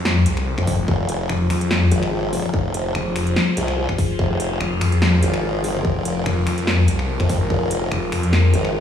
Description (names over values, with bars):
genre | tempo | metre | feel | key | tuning
heavy wobble dubstep | 145 BPM | 4/4 | swing 54% on 16ths, half-time | F minor | A4 = 440 Hz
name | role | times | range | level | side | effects
evolving wavetable pad | sustained chords | 0.0-8.8 s | F3 to C5 | -26 LUFS | left 1 dB | phaser, built-in reverb, sidechain pumping
snarling distorted saw bass | bass | 0.0-8.5 s | F1 to F2 | -18 LUFS | left 1 dB | distortion, overdrive
big-room dance drum kit | drums | 0.1-8.7 s | finger snaps, hi-hat, snare drum | -24 LUFS | left 1 dB | studio reverb
formant-sweep wobble bass | bass | 0.6-8.8 s | F1 to F2 | -22 LUFS | left 1 dB | chorus, overdrive
electronic kick drum | drums | 0.6-7.6 s | none | -22 LUFS | left 1 dB | studio reverb
room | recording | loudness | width
light reverb | played on a big sound system in a bare room, large studio reverb, studio ambience | -17 LUFS | side -9 dB against mid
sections
0.0-8.8 A section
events
none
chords
0.0 Fm